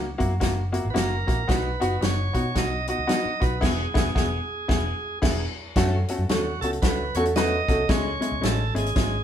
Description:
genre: uptempo 1960s-style soul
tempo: 112 BPM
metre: 4/4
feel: swing 61% on 8ths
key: F# dorian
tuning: A4 = 441 Hz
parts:
  - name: clear upright piano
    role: accompaniment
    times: 0.0-9.1 s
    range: G#3 to B4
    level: -27 LUFS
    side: left 1 dB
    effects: none
  - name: vintage muted fingered electric bass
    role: bass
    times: 0.0-9.2 s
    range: E1 to B2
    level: -28 LUFS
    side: equal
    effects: none
  - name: natural country drum kit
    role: drums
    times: 0.2-9.1 s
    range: crash cymbal, hi-hat, kick drum, snare drum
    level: -26 LUFS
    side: equal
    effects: none
  - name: bright tonewheel organ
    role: melody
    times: 0.9-9.2 s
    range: F#4 to D#5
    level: -29 LUFS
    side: right 3 dB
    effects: overdrive, stopped rotary speaker
room: moderate stone room reverb, RT60 1.0 s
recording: band playing live in one room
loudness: -22 LUFS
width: side -10 dB against mid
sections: 0.0-5.8 A section; 5.8-9.2 B section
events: band accent 3.6-5.8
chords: 0.0 F#7; 1.5 B; 3.6 E; 5.8 F#m; 7.9 C#m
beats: 0.41 0.95 | 1.49 2.02 2.56 3.09 | 3.63 4.16 4.69 5.23 | 5.76 6.29 6.83 7.36 | 7.89 8.43 8.96

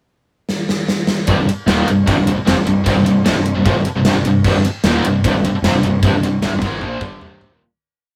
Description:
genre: hard rock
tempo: 152 BPM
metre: 4/4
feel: straight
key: C minor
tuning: A4 = 440 Hz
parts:
  - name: gated 80s drum kit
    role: drums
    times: 0.5-7.5 s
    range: crash cymbal, kick drum, ride cymbal, snare drum, toms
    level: -20 LUFS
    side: equal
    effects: none
  - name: cranked stack guitar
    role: riff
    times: 1.3-7.6 s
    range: C2 to Bb3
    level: -22 LUFS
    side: equal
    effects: overdrive
  - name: distorted electric guitar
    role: riff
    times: 1.3-7.6 s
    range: C2 to Bb3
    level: -21 LUFS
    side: equal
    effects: distortion
  - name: scooped high-gain guitar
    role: riff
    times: 1.3-7.6 s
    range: C2 to Bb3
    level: -24 LUFS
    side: equal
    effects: distortion
  - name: fuzz fingered electric bass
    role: bass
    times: 1.3-7.6 s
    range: C1 to Bb1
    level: -24 LUFS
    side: equal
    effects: overdrive
room: wet booth ambience, RT60 0.2 s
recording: rough rehearsal-room recording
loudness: -16 LUFS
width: mono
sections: 0.0-1.3 pickup bar; 1.3-7.6 riff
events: drum fill 0.5-1.3, 6.8-7.6; fade-out 6.0-7.6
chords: 0.0 N.C.; 1.3 Cm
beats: 0.10 0.49 0.89 | 1.28 1.68 2.08 2.47 | 2.87 3.26 3.66 4.06 | 4.45 4.85 5.24 5.64 | 6.03 6.43 6.82 7.21

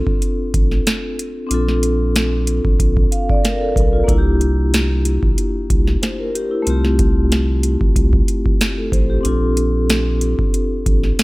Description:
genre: hip hop, boom-bap hip-hop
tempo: 93 BPM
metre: 4/4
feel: swing 54% on 16ths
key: Bb major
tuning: A4 = 440 Hz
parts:
  - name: vibraphone with soft mallets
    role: accompaniment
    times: 0.0-11.2 s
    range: A3 to F5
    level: -20 LUFS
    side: left 1 dB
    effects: high-pass filter, low-pass filter
  - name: warm sub bass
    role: bass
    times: 0.0-11.1 s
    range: G1 to C2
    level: -18 LUFS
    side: equal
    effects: none
  - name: booming analog drum machine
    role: drums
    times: 0.1-11.2 s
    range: hi-hat, kick drum, snare drum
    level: -17 LUFS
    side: equal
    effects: none
room: digital ambience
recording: none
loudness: -14 LUFS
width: side -21 dB against mid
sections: 0.0-11.2 A section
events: kick muted 9.2-9.9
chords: 0.0 Bbmaj7; 4.1 C7; 6.7 Fadd9; 9.2 Bbmaj7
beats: 0.21 0.86 | 1.50 2.15 2.79 3.44 | 4.08 4.73 5.37 6.02 | 6.66 7.31 7.96 8.60 | 9.24 9.89 10.54 11.18

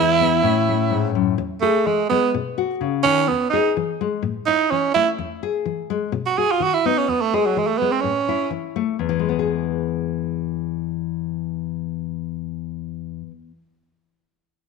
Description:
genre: highlife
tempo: 126 BPM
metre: 4/4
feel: straight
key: E major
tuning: A4 = 442 Hz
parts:
  - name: raspy tenor saxophone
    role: melody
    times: 0.0-8.5 s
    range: F#3 to G#4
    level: -19 LUFS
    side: right 7 dB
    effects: none
  - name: nylon-string guitar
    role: accompaniment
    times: 0.0-13.6 s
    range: E2 to G#4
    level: -23 LUFS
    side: left 11 dB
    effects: none
room: moderate echo chamber reverb, RT60 1.4 s, small room ambience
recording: 1960s-style stereo with parts hard left and right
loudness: -19 LUFS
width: side -4 dB against mid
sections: 0.0-1.4 A section; 1.4-9.0 B section; 9.0-12.8 C section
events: tenor saxophone solo 1.4-9.0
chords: 0.4 A; 1.4 E; 2.3 B; 3.3 E; 4.2 A5; 5.2 E; 6.1 B; 7.1 E; 8.0 A; 9.0 E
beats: 0.44 0.91 | 1.39 1.86 2.33 2.80 | 3.27 3.75 4.22 4.70 | 5.17 5.64 6.12 6.59 | 7.07 7.54 8.02 8.49 | 8.97 9.45 9.92 10.40 | 10.88 11.35 11.83 12.31

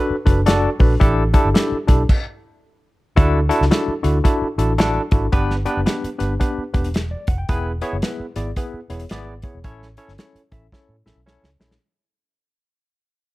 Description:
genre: uptempo 1960s-style soul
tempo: 111 BPM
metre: 4/4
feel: swing 61% on 8ths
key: D major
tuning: A4 = 439 Hz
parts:
  - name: barky tine electric piano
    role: accompaniment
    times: 0.0-11.7 s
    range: B3 to G5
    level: -22 LUFS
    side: left 1 dB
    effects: overdrive, fast stereo tremolo
  - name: vintage muted fingered electric bass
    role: bass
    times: 0.1-11.8 s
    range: E1 to A2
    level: -21 LUFS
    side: equal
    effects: none
  - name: warm soul drum kit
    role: drums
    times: 0.3-11.8 s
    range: crash cymbal, hi-hat, kick drum, snare drum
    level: -18 LUFS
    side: equal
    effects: none
room: light reverb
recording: none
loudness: -16 LUFS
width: side -19 dB against mid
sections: 0.0-3.2 A section; 3.2-11.8 B section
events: stop 2.1-3.2; fade-out 3.2-11.8; drum fill 10.7-11.8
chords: 0.0 Bm7; 1.0 A7sus4; 2.1 N.C.; 3.2 Dadd9; 5.3 G; 7.5 E; 9.6 A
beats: 0.47 | 1.01 1.55 2.09 2.63 | 3.17 3.71 4.25 4.79 | 5.33 5.87 6.41 6.95 | 7.49 8.03 8.57 9.11 | 9.65 10.19 10.73 11.27

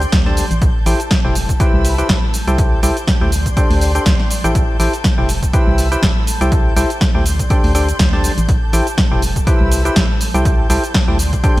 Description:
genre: piano house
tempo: 122 BPM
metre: 4/4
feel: swing 56% on 16ths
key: A minor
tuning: A4 = 440 Hz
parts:
  - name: warm studio violin section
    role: sustained chords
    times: 0.0-11.6 s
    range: A4 to G6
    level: -28 LUFS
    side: equal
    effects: sidechain pumping
  - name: organ-like FM bass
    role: bass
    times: 0.0-11.6 s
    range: E1 to D2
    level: -18 LUFS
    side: equal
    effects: sidechain pumping
  - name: punchy analog drum machine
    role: drums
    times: 0.0-11.6 s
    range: hi-hat, shaker, snare drum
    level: -20 LUFS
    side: equal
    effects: gated reverb
  - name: electronic kick drum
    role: drums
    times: 0.1-11.5 s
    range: none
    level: -16 LUFS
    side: equal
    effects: none
  - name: percussive organ stab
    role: riff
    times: 0.3-11.6 s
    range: D4 to A5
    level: -20 LUFS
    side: left 1 dB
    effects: chorus, sidechain pumping
room: light reverb, digital ambience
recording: bright 1980s-style digital production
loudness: -12 LUFS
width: side -17 dB against mid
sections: 0.0-11.6 A section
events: none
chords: 0.0 D7sus4; 0.6 Am7; 1.6 Cmaj7; 2.3 Am7/C; 3.3 D7sus4; 4.6 Am7; 5.5 Cmaj7; 6.3 Am7/C; 7.3 D7sus4; 8.5 Am7; 9.5 Cmaj7; 10.2 Am7/C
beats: 0.12 | 0.62 1.11 1.60 2.09 | 2.58 3.08 3.57 4.06 | 4.55 5.04 5.54 6.03 | 6.52 7.01 7.50 7.99 | 8.48 8.98 9.47 9.96 | 10.45 10.94 11.44

